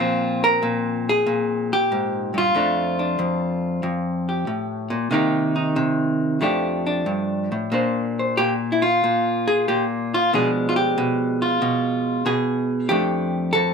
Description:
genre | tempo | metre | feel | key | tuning
solo jazz | 93 BPM | 4/4 | swing 69% on 8ths, rubato | F mixolydian | A4 = 440 Hz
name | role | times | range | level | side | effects
vintage hollow-body jazz guitar | solo | 0.0-13.7 s | F2 to C5 | -19 LUFS | equal | none
room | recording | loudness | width
light reverb | minimal, uncompressed stereo recording | -19 LUFS | side -5 dB against mid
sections
0.0-13.7 A section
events
none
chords
0.0 Bbsus2; 2.6 F69; 5.1 Cm7; 6.4 F69; 7.7 Bbadd9; 10.3 Bdim7; 12.9 F69

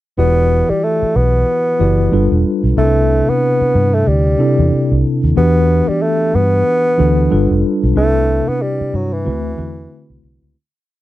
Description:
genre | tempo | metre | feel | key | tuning
soul | 92 BPM | 4/4 | swing 58% on 16ths | E minor | A4 = 440 Hz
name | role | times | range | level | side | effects
mellow bassoon | melody | 0.2-10.2 s | E3 to B3 | -16 LUFS | equal | none
mellow tine electric piano | accompaniment | 0.2-10.6 s | C3 to D5 | -17 LUFS | left 1 dB | medium stereo tremolo
vintage muted fingered electric bass | bass | 0.2-10.5 s | E1 to G2 | -15 LUFS | equal | none
room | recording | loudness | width
light reverb | dry, close 1970s-style studio recording | -12 LUFS | side -15 dB against mid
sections
0.2-10.5 verse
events
fade-out 8.0-10.5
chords
0.2 Em9; 2.1 G9; 2.8 Cmaj9; 5.4 Em9; 7.3 G9; 8.0 Cmaj9; 9.3 D13

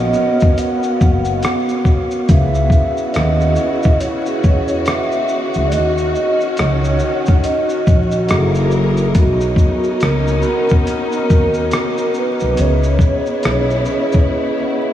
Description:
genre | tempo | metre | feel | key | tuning
lo-fi hip hop | 70 BPM | 4/4 | swing 60% on 16ths | C# dorian | A4 = 441 Hz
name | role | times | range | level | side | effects
hollow clarinet-like synth lead | melody | 0.0-14.9 s | F#4 to F#5 | -20 LUFS | right 1 dB | chorus, tape echo
vibraphone with medium hard mallets | accompaniment | 0.0-14.9 s | F#3 to F#5 | -20 LUFS | equal | cassette tape
dark studio string section | sustained chords | 0.0-14.9 s | C#3 to A#4 | -24 LUFS | left 1 dB | none
upright bass | bass | 0.0-13.8 s | F#1 to E2 | -18 LUFS | equal | none
dusty soul sampler-style drum kit | drums | 0.1-14.3 s | hi-hat, kick drum, rim click, shaker | -17 LUFS | equal | none
room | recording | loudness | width
moderate huge ambient reverb, RT60 7.3 s | dreamy mix soaked in reverb, vinyl crackle, studio reverb | -13 LUFS | side -11 dB against mid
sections
0.0-14.9 A section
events
break 14.3-14.9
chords
0.0 Bmaj9; 2.3 C#m11; 5.7 D#m7; 8.3 F#9; 9.2 Bmaj9; 12.6 C#m7

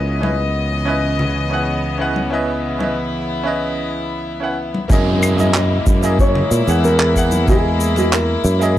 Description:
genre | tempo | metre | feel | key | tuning
sunset chillout | 93 BPM | 4/4 | straight | unclear | A4 = 442 Hz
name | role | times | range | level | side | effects
bright concert grand piano | accompaniment | 0.0-8.8 s | A#3 to F#5 | -22 LUFS | right 1 dB | auto-pan, analog delay
rich chamber string section | sustained chords | 0.0-8.8 s | C#3 to D#5 | -22 LUFS | left 2 dB | none
sustaining fretless electric bass | bass | 0.0-8.8 s | C#2 to A#2 | -19 LUFS | equal | none
congas | percussion | 0.2-8.1 s | none | -24 LUFS | left 2 dB | none
electronic kick drum | drums | 4.9-7.6 s | none | -16 LUFS | equal | overdrive
shaker, claves and handclaps | drums | 4.9-8.7 s | none | -22 LUFS | right 1 dB | none
downlifter | sound effects | 4.9-8.8 s | none | -28 LUFS | equal | none
nylon-string guitar | melody | 5.6-8.7 s | F#4 to D#5 | -21 LUFS | equal | analog delay
room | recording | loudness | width
studio reverb | dry, gritty hardware recording | -15 LUFS | side -13 dB against mid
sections
0.0-4.9 A section; 4.9-8.8 B section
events
none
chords
0.0 C#m9; 4.9 F#13

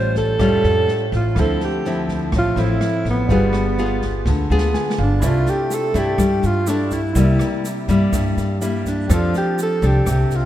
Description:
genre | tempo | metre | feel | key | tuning
bossa nova | 124 BPM | 4/4 | straight | C major | A4 = 440 Hz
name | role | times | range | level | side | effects
breathy alto saxophone | melody | 0.0-10.5 s | B3 to B#4 | -22 LUFS | right 1 dB | tape echo
nylon-string guitar | accompaniment | 0.0-10.5 s | G2 to A4 | -21 LUFS | left 2 dB | none
warm concert grand piano | accompaniment | 0.0-10.5 s | C#4 to Ab5 | -31 LUFS | right 5 dB | none
upright bass | bass | 0.0-10.5 s | G1 to G2 | -20 LUFS | equal | none
open jazz drum kit | drums | 0.2-10.4 s | kick drum, rim click, snare drum | -26 LUFS | equal | none
egg shaker | percussion | 5.2-10.5 s | none | -37 LUFS | right 6 dB | none
room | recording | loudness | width
moderate lush hall reverb, RT60 1.8 s | dreamy mix soaked in reverb | -16 LUFS | side -12 dB against mid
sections
0.0-5.2 A section; 5.2-10.5 B section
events
drum fill 4.3-5.2; grand piano fill 4.5-5.2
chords
0.0 A7alt; 1.4 Dm9; 3.3 G7b9; 5.2 C69; 7.2 C7; 9.1 F6

